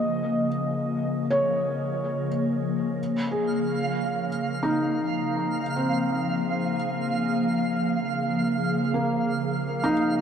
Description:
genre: ambient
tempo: 61 BPM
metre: 4/4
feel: straight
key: Bb minor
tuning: A4 = 441 Hz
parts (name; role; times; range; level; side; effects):
- glassy FM pad; sustained chords; 0.0-10.2 s; Db3 to Ab4; -26 LUFS; left 1 dB; ensemble chorus, built-in reverb, phaser
- felt-muted upright piano; arpeggios; 0.0-10.2 s; Bb3 to Eb5; -28 LUFS; equal; diffuse ambient delay
- twinkling granular texture; texture; 3.3-10.2 s; F5; -31 LUFS; right 3 dB; built-in reverb
room: wet huge ambient reverb, RT60 9.0 s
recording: dark, warm production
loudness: -23 LUFS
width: side -8 dB against mid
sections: 0.0-3.0 A section; 3.0-10.2 B section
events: none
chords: 0.0 Bbm7

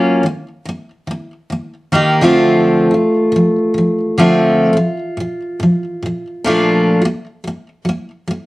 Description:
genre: pop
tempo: 106 BPM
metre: 4/4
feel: straight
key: Bb major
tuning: A4 = 440 Hz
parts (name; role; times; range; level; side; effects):
- picked steel-string acoustic guitar; solo; 0.0-8.5 s; Bb2 to G4; -12 LUFS; equal; none
room: light reverb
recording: worn, warbling old tape, cassette tape, warbly pitch drift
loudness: -12 LUFS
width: side -19 dB against mid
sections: 0.0-8.5 A section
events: none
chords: 0.2 Eb; 2.2 Dm7; 4.7 Bbmaj7; 7.0 Gb

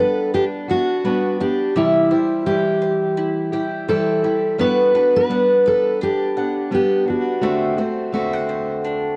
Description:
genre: acoustic pop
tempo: 85 BPM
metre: 4/4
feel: swing 55% on 16ths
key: G major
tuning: A4 = 438 Hz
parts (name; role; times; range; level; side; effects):
- fingerpicked steel-string acoustic guitar; melody; 0.0-9.2 s; E4 to B4; -20 LUFS; equal; none
- fingerpicked steel-string acoustic guitar; accompaniment; 0.0-9.2 s; C3 to G4; -25 LUFS; equal; none
- bowl-back mandolin; arpeggios; 0.0-9.2 s; G3 to G5; -31 LUFS; equal; none
room: moderate plate reverb, RT60 3.6 s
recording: worn, warbling old tape, cassette tape, warbly pitch drift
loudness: -19 LUFS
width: mono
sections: 0.0-9.2 A section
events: none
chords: 0.0 Gmaj7; 1.8 C; 4.6 Gmaj7; 7.4 D7

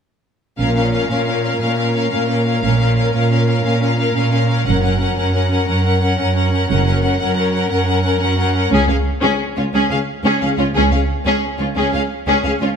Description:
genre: cinematic, heroic adventure film score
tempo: 118 BPM (dotted quarters)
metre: 12/8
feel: straight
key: Bb minor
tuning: A4 = 440 Hz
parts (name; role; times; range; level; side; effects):
- rich studio violin section; melody; 0.6-12.7 s; Ab4 to Gb5; -22 LUFS; left 4 dB; none
- clear symphonic violin section; second line; 0.6-12.7 s; Db4 to Bb4; -22 LUFS; left 4 dB; none
- clear symphonic viola section; accompaniment; 0.6-12.7 s; Db4; -22 LUFS; right 2 dB; none
- rich studio double bass section; bass; 0.6-10.9 s; Gb1 to Db2; -21 LUFS; right 3 dB; none
- warm studio cello section; bass; 0.6-12.7 s; Db2 to Bb2; -18 LUFS; right 2 dB; none
room: moderate recital hall reverb, RT60 1.8 s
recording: none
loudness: -14 LUFS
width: side -7 dB against mid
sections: 0.6-12.8 A section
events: build-up 0.6-12.8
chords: 0.6 Bbm; 4.7 Gb; 8.7 Db5

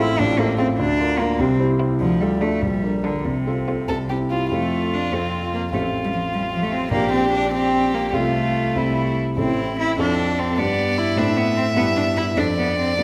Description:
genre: quick classical-period movement for piano trio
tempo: 99 BPM (dotted quarters)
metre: 6/8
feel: rubato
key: F major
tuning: A4 = 440 Hz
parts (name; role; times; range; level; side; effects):
- warm violin; melody; 0.0-13.0 s; D4 to E5; -27 LUFS; equal; none
- clear cello; second line; 0.0-13.0 s; C3 to E4; -25 LUFS; equal; none
- warm concert grand piano; accompaniment; 0.0-13.0 s; A1 to C5; -24 LUFS; equal; none
room: wet scoring stage reverb, RT60 2.2 s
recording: none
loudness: -21 LUFS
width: mono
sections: 0.0-4.5 A section; 4.5-13.0 B section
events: none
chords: 0.0 F/A; 0.8 Bb/D; 1.4 C; 2.0 Dm; 2.6 Gm/Bb; 3.2 F/C; 3.9 C; 4.5 F; 5.7 F/A; 6.9 Gm/Bb; 8.1 F/C; 8.8 C; 9.4 Am; 10.0 F; 10.6 G; 11.2 Am; 11.8 Em/G; 12.4 Dm7/F

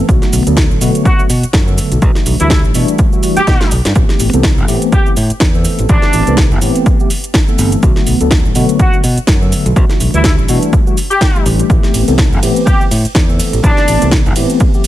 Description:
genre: filtered disco house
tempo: 124 BPM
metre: 4/4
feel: swing 57% on 16ths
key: A dorian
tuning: A4 = 440 Hz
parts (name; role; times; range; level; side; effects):
- mellow tine electric piano; accompaniment; 0.0-14.8 s; D3 to A4; -16 LUFS; left 1 dB; medium stereo tremolo, phaser, sidechain pumping
- fingered electric bass; bass; 0.1-14.4 s; G1 to B2; -15 LUFS; equal; sidechain pumping
- electronic kick drum; drums; 0.1-14.7 s; none; -12 LUFS; equal; overdrive
- house drum kit; drums; 0.1-14.9 s; cabasa, hi-hat, ride cymbal, snare drum; -19 LUFS; equal; overdrive, sidechain pumping on hats, sidechain pumping on perc, sidechain pumping on cymbals
- mellow horn section; melody; 1.1-14.1 s; D4 to G4; -18 LUFS; equal; sidechain pumping, ping-pong delay
room: little or no reverb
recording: none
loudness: -9 LUFS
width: side -14 dB against mid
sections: 0.0-14.9 A section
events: drum fill 3.5-4.0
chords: 0.1 Bm7; 2.0 Em11; 4.0 Am9; 7.8 Bm7; 9.8 Em11; 11.7 Am9

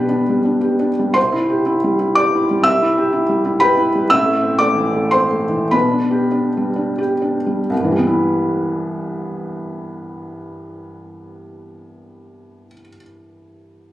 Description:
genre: neoclassical minimalist piano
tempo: 84-126 BPM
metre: 3/4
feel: rubato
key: C major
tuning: A4 = 440 Hz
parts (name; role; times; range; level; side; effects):
- felt-muted upright piano; solo; 0.0-13.9 s; A1 to E6; -15 LUFS; equal; none
room: moderate concert hall reverb, RT60 2.0 s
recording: recorded on a phone in the room, club reverb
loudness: -14 LUFS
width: side -14 dB against mid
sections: 0.0-7.7 A section; 7.7-11.9 B section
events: slowing down 3.4-7.7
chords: 0.0 G/B; 1.2 Cmaj7; 4.1 Am; 5.7 G/B; 7.7 Cmaj7

